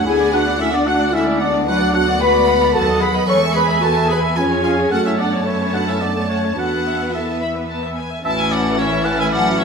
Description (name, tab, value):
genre	quick classical-period movement for symphony orchestra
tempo	111 BPM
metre	3/4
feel	straight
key	A major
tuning	A4 = 440 Hz
part	rich chamber violin section	melody	0.0-9.6 s	E5 to B5	-26 LUFS	equal	none
part	dark clarinet	second line	0.0-9.6 s	A3 to A4	-25 LUFS	right 2 dB	none
part	large flute ensemble	second line	0.0-9.6 s	C#5 to C#6	-27 LUFS	right 1 dB	none
part	rich chamber violin section	second line	0.0-9.6 s	E4 to C#6	-26 LUFS	equal	none
part	warm symphonic viola section	accompaniment	0.0-9.6 s	E3 to F#5	-24 LUFS	left 1 dB	none
part	mellow French horn section	sustained chords	0.0-9.6 s	C#4 to C#5	-20 LUFS	left 2 dB	none
part	clear chamber double bass section	bass	0.0-9.6 s	A1 to F#2	-25 LUFS	right 1 dB	none
part	rich chamber cello section	bass	0.0-9.6 s	A2 to C#4	-25 LUFS	equal	none
part	warm oboe	second line	0.1-9.6 s	C#5 to C#6	-25 LUFS	right 1 dB	none
part	warm bassoon	accompaniment	8.2-9.6 s	E3	-26 LUFS	right 2 dB	none
room	wet stone room reverb, RT60 1.1 s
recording	minimal, uncompressed stereo recording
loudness	-15 LUFS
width	side -5 dB against mid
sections	0.0-8.2 A section; 8.2-9.6 B section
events	none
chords	0.1 D; 1.7 Bm/D; 2.8 B7/D#; 3.3 E; 4.4 C#7/E#; 4.9 F#m; 6.6 Esus4; 7.7 E; 8.2 A